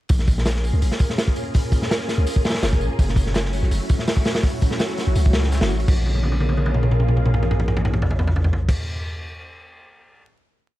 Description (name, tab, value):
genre	drum and bass, jungle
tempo	166 BPM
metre	4/4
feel	straight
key	Bb minor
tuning	A4 = 439 Hz
part	soft string machine	sustained chords	0.3-8.7 s	Gb3 to Bb4	-28 LUFS	equal	ensemble chorus, vintage 12-bit sampler grit
part	long sustained 808-style bass	bass	0.1-8.7 s	F1 to Db2	-21 LUFS	equal	none
part	crunchy breakbeat drum kit	drums	0.1-10.2 s	crash cymbal, hi-hat, kick drum, snare drum, toms	-20 LUFS	equal	none
part	crunchy breakbeat drum kit	drums	0.1-5.8 s	hi-hat, snare drum, tambourine	-37 LUFS	equal	high-pass filter on hats, high-pass filter on snare, high-pass filter on perc, high-pass filter on room
room	little or no reverb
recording	vinyl crackle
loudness	-18 LUFS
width	side -16 dB against mid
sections	0.1-5.9 drop; 5.9-8.8 final chord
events	drop 0.1-5.9; drum fill 6.1-8.7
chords	0.1 Bbm7; 3.0 Gbm7; 5.9 Bbm7